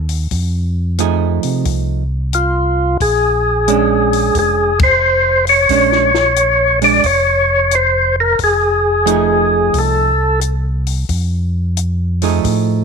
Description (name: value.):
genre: soul jazz organ trio.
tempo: 89 BPM.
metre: 4/4.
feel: swing 67% on 8ths.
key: unclear.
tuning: A4 = 440 Hz.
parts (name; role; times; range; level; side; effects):
mellow tonewheel organ; bass; 0.0-12.8 s; F1 to C3; -18 LUFS; equal; overdrive, chorus vibrato, slow rotary speaker.
compact cocktail drum kit; drums; 0.1-12.7 s; hi-hat, kick drum, ride cymbal, snare drum; -22 LUFS; left 4 dB; none.
hollow-body jazz guitar; accompaniment; 1.0-12.8 s; F3 to G#4; -17 LUFS; right 16 dB; none.
percussive tonewheel organ; melody; 2.3-10.4 s; F4 to D5; -12 LUFS; left 2 dB; slow rotary speaker.
room: light reverb, studio reverb.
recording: 1960s-style stereo.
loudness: -12 LUFS.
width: side -5 dB against mid.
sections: 0.0-12.8 A section.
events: band accent 4.7-5.0.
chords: 0.0 F7#9; 3.0 Bb7#9; 8.4 F7#9.